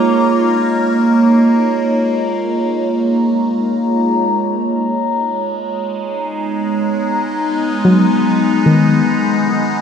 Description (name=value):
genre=ambient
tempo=free time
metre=none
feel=none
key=G# dorian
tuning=A4 = 439 Hz
part: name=evolving wavetable pad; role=sustained chords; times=0.0-9.8 s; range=G#3 to A#5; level=-14 LUFS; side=equal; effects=phaser, built-in reverb
part: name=organ-like drone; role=drone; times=0.0-4.2 s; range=G#3 to D#4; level=-24 LUFS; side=right 2 dB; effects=ensemble chorus, built-in reverb
part: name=soft round pluck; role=arpeggios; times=7.8-9.8 s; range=D#3 to F#3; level=-15 LUFS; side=left 2 dB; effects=chorus, diffuse ambient delay
room=wet lush hall reverb, RT60 3.0 s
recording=none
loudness=-13 LUFS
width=side -7 dB against mid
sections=0.0-4.2 A section; 4.2-9.8 B section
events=none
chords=0.0 A#m; 4.2 G#madd9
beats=free time